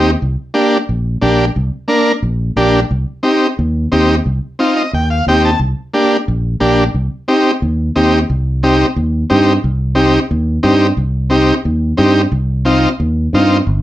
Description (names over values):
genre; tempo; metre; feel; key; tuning
latin, cumbia; 178 BPM; 4/4; straight; C minor; A4 = 440 Hz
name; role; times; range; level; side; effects
combo organ; accompaniment; 0.0-13.6 s; Bb3 to A5; -12 LUFS; equal; none
fingered electric bass; bass; 0.0-13.8 s; G1 to G2; -15 LUFS; equal; none
room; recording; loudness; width
wet studio ambience, RT60 0.5 s; heard from further back in the room; -12 LUFS; side -14 dB against mid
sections
0.0-8.3 A section; 8.3-13.8 B section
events
transistor combo organ fill 4.6-5.6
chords
0.2 Gm; 2.9 Cm; 5.6 Gm/C; 6.9 Cm